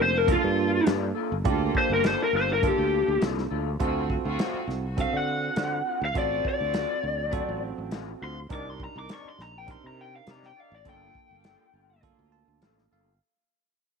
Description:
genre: straight-eighth soul blues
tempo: 102 BPM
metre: 4/4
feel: straight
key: G minor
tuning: A4 = 437 Hz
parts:
  - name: lead guitar through a small cranked amp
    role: melody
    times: 0.0-12.0 s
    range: F4 to D6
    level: -26 LUFS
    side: left 3 dB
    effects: overdrive, slapback echo
  - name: bell-like tine electric piano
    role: accompaniment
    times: 0.0-13.2 s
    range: Bb3 to A5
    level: -32 LUFS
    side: right 15 dB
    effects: none
  - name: sustaining fretless electric bass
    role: bass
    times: 0.0-13.2 s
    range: F1 to D3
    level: -31 LUFS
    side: equal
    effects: none
  - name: muted chamber string section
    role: sustained chords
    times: 0.2-12.5 s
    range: F#3 to Bb4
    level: -38 LUFS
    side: left 2 dB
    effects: none
  - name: warm soul drum kit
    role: drums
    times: 0.3-12.9 s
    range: hi-hat, kick drum, snare drum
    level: -30 LUFS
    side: equal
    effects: none
  - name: electric guitar through a small old amp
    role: stabs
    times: 0.9-13.1 s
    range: D3 to D5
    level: -37 LUFS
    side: left 14 dB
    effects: analog chorus
room: studio reverb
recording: 1960s-style stereo with parts hard left and right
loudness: -24 LUFS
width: side -5 dB against mid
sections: 0.0-13.2 A section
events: fade-out 0.0-13.2; tine electric piano fill 12.0-13.2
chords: 0.0 Gm9; 3.8 D7#9; 8.5 Cm9; 10.9 Gm9

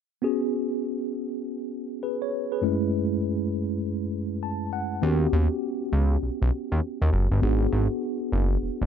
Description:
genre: R&B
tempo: 100 BPM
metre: 4/4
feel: swing 64% on 16ths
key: unclear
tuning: A4 = 440 Hz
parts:
  - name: mellow tine electric piano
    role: accompaniment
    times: 0.2-8.9 s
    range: F#2 to A5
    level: -27 LUFS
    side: equal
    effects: medium stereo tremolo
  - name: fat analog bass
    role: bass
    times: 5.0-8.9 s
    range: E1 to D#2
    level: -22 LUFS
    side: equal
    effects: none
room: light reverb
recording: dark, warm production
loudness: -24 LUFS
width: side -8 dB against mid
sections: 0.2-8.9 A section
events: tine electric piano fill 4.1-5.0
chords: 0.2 C#7sus4; 2.6 F#m7; 5.0 D#7alt; 7.4 G#m7b5

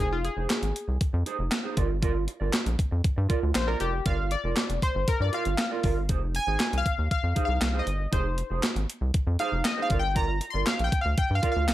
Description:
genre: early-eighties boogie funk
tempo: 118 BPM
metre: 4/4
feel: straight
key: F dorian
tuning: A4 = 437 Hz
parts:
  - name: funky polysynth comp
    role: accompaniment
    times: 0.0-11.7 s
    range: F4 to C6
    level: -29 LUFS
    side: left 2 dB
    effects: chorus
  - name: mellow electric guitar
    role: riff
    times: 0.0-11.7 s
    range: Eb4 to D5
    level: -34 LUFS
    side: right 8 dB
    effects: analog chorus
  - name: rubbery square bass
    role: bass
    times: 0.0-11.7 s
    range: F1 to G2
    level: -28 LUFS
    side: equal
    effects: none
  - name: clean 12-bit digital drum machine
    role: drums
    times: 0.2-11.7 s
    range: handclaps, hi-hat, kick drum, snare drum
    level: -27 LUFS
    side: equal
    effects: overdrive, gated reverb
room: light reverb, digital ambience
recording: none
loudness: -24 LUFS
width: side -14 dB against mid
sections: 0.0-11.7 A section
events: analog polysynth solo 0.0-11.7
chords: 0.0 Fm7; 1.8 Gm7; 6.1 Fm7; 9.9 Gm7

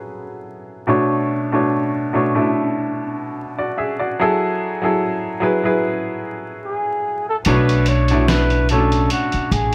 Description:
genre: lo-fi hip hop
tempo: 73 BPM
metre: 4/4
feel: swing 56% on 16ths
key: B dorian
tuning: A4 = 439 Hz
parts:
  - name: bright upright piano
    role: accompaniment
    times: 0.0-9.7 s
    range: B2 to E5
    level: -21 LUFS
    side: equal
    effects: cassette tape, low-pass filter
  - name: trumpet with bucket mute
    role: melody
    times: 6.6-9.7 s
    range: F#4 to C#5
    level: -24 LUFS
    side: equal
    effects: low-pass filter
  - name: lo-fi sampler-style drum kit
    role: drums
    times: 7.4-9.7 s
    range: hi-hat, snare drum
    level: -27 LUFS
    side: equal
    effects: none
  - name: upright bass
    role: bass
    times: 7.5-9.7 s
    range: A1 to B1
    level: -20 LUFS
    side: equal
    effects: none
room: moderate studio reverb, RT60 0.6 s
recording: vinyl crackle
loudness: -19 LUFS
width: mono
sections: 0.0-7.5 A section; 7.5-9.7 B section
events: filter sweep on upright piano 0.0-7.5; kick muted 7.5-9.7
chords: 0.0 F#m9; 0.9 Bm9; 4.2 F#m9; 7.5 Bm9

